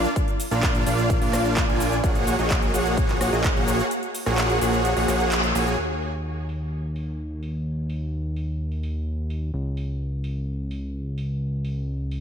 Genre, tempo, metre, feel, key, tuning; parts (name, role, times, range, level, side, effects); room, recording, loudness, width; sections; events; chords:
EDM, festival progressive house; 128 BPM; 4/4; straight; A4 = 435 Hz
supersaw chords; riff; 0.0-5.8 s; Bb3 to Ab5; -23 LUFS; equal; sidechain pumping, low-pass filter, diffuse ambient delay
fat analog bass; bass; 0.0-12.2 s; Bb1 to Eb2; -26 LUFS; equal; sidechain pumping
big-room dance drum kit; drums; 0.0-12.2 s; handclaps, hi-hat, rim click, shaker; -29 LUFS; equal; low-pass filter on perc, studio reverb, low-pass filter on hats, low-pass filter on snare
electronic kick drum; drums; 0.2-3.5 s; -24 LUFS; equal; studio reverb
moderate lush hall reverb, RT60 1.7 s, digital ambience; dreamy mix soaked in reverb; -22 LUFS; side -8 dB against mid
0.0-5.8 A section; 5.8-12.2 B section
drop 0.0-5.8; kick drops out 3.9-5.8; band accent 5.3
0.0 Bb; 2.0 Gbadd9/Bb; 5.8 N.C.